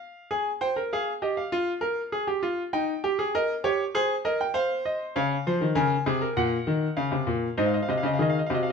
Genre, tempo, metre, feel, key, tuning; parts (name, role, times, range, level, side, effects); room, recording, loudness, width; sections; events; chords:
classical, baroque-style 3-part fugue for grand piano; 99 BPM; 4/4; straight; A4 = 440 Hz
clear grand piano; solo; 0.0-8.7 s; Ab2 to Ab5; -24 LUFS; equal
moderate stone room reverb, RT60 1.0 s; minimal, uncompressed stereo recording; -24 LUFS; side -6 dB against mid
0.0-8.7 A section
0.3 Ab; 1.5 Fmadd11; 2.7 Eb7; 3.9 Ab; 5.2 Db; 6.4 Gb/Bb; 7.6 Ab7